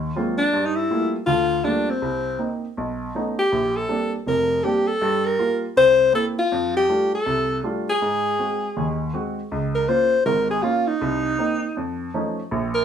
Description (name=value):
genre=jazz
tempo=160 BPM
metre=4/4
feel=swing 64% on 8ths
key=Db major from 9.5 s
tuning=A4 = 441 Hz
part: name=warm baby grand piano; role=accompaniment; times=0.0-12.8 s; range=F1 to Gb4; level=-25 LUFS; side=right 1 dB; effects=none
part: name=clear alto saxophone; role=melody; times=0.4-12.8 s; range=C4 to C5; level=-20 LUFS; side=left 1 dB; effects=none
room=wet studio ambience, RT60 0.5 s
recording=band playing live in one room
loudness=-19 LUFS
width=side -8 dB against mid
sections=0.0-9.5 A section; 9.5-12.8 B section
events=none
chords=0.0 Ab13; 0.5 Gm9; 2.0 Cm7; 2.8 B9; 3.5 Bb69; 5.0 Gm7; 5.8 C7; 6.5 F69; 8.0 Ab7; 9.5 Db6; 11.0 Cm7; 11.7 Faug7